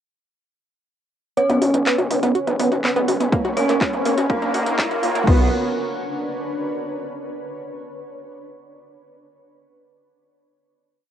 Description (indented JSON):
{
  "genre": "melodic techno",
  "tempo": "123 BPM",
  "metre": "4/4",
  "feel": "straight",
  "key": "B harmonic minor",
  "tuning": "A4 = 440 Hz",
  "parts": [
    { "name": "soft supersaw", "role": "melody", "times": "1.4-5.5 s", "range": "A#3 to C#4", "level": "-24 LUFS", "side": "equal", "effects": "sidechain pumping, low-pass filter, cassette tape, analog delay" },
    { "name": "dark detuned synth bell", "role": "second line", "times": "1.4-5.5 s", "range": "A#4 to C#5", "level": "-27 LUFS", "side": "right 1 dB", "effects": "chorus, phaser, sidechain pumping, cassette tape, analog delay" },
    { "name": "tight sequenced synth", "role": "arpeggios", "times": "1.4-5.5 s", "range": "A#3 to F#4", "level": "-23 LUFS", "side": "right 2 dB", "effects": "chorus, phaser, sidechain pumping, cassette tape, analog delay" },
    { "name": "techno drum kit", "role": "drums", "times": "1.4-5.4 s", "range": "crash cymbal, handclaps, hi-hat", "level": "-26 LUFS", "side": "equal", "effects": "sidechain pumping on hats, cassette tape, sidechain pumping on cymbals" },
    { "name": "riser", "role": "sound effects", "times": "3.0-5.3 s", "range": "none", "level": "-29 LUFS", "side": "left 1 dB", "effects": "none" },
    { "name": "granular cloud pad", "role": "texture", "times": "2.1-7.2 s", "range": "C#4 to C#5", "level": "-28 LUFS", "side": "equal", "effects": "built-in reverb, sidechain pumping, cassette tape" },
    { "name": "gritty driven synth bass", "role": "bass", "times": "1.5-5.5 s", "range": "F#1 to B1", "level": "-25 LUFS", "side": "equal", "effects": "sidechain pumping, high-pass filter" },
    { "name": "electronic kick drum", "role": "drums", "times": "3.3-5.4 s", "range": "none", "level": "-19 LUFS", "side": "equal", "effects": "cassette tape" }
  ],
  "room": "moderate booth ambience, RT60 0.2 s",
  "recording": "home recording on cassette, high-pass filter",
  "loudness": "-18 LUFS",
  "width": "side -9 dB against mid",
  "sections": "1.4-5.3 build; 5.3-7.2 final chord",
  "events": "build-up 1.4-5.3; filter sweep on supersaw synth 1.4-5.3; riser 3.0-5.3",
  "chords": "1.4 Bsus2; 3.3 F#/B; 5.3 Bmadd9"
}